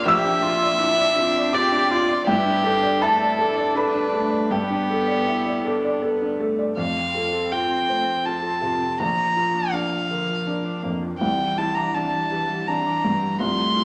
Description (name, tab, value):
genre	neoclassical piano and strings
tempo	81 BPM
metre	3/4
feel	rubato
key	F major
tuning	A4 = 440 Hz
part	rich violin	melody	0.0-13.8 s	G4 to C6	-25 LUFS	equal	none
part	warm cello	second line	0.0-13.8 s	E3 to G4	-31 LUFS	equal	none
part	felt-muted upright piano	accompaniment	0.0-13.8 s	Bb1 to E6	-26 LUFS	equal	none
part	warm viola	accompaniment	0.0-13.8 s	D3 to A4	-35 LUFS	equal	none
room	wet large studio reverb, RT60 1.3 s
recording	none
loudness	-22 LUFS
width	mono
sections	0.0-6.8 A section; 6.8-13.8 B section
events	none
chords	0.0 Bb; 2.3 Gadd9; 6.8 F; 9.0 Bb; 11.2 Cadd9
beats	| 0.07 0.80 1.53 | 2.27 3.01 3.76 | 4.52 5.27 6.03 | 6.78 7.52 8.26 | 9.00 9.73 10.47 | 11.20 11.94 12.67 | 13.40